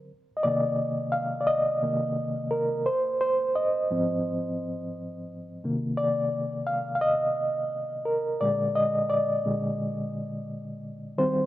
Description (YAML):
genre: soul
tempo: 87 BPM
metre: 4/4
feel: swing 54% on 16ths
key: unclear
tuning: A4 = 437 Hz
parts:
  - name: reed electric piano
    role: solo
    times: 0.0-11.5 s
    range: Ab2 to F5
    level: -25 LUFS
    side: equal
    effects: fast tremolo
room: moderate plate reverb, RT60 3.5 s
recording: rough home demo mix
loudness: -25 LUFS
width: side -14 dB against mid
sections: 0.1-11.2 A section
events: reed electric piano solo 0.1-11.2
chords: 0.1 Cm9; 2.9 Ab6; 5.6 Cm9; 8.4 Bb7